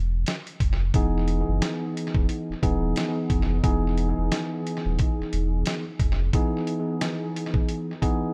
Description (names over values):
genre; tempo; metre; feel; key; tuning
hip hop, boom-bap hip-hop; 89 BPM; 4/4; swing 59% on 16ths; E major; A4 = 444 Hz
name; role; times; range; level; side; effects
warm sub bass; bass; 0.0-6.3 s; D#1 to F#1; -28 LUFS; equal; none
dusty soul sampler-style drum kit; drums; 0.3-8.2 s; hi-hat, kick drum, snare drum; -28 LUFS; equal; tape echo
tine electric piano; accompaniment; 1.0-8.3 s; E3 to G#4; -30 LUFS; equal; cassette tape, high-pass filter, low-pass filter, tape echo
room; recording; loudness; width
little or no reverb; echo-heavy mix; -25 LUFS; mono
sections
0.0-8.3 A section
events
break 0.0-0.9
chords
0.0 N.C.; 0.9 Emaj7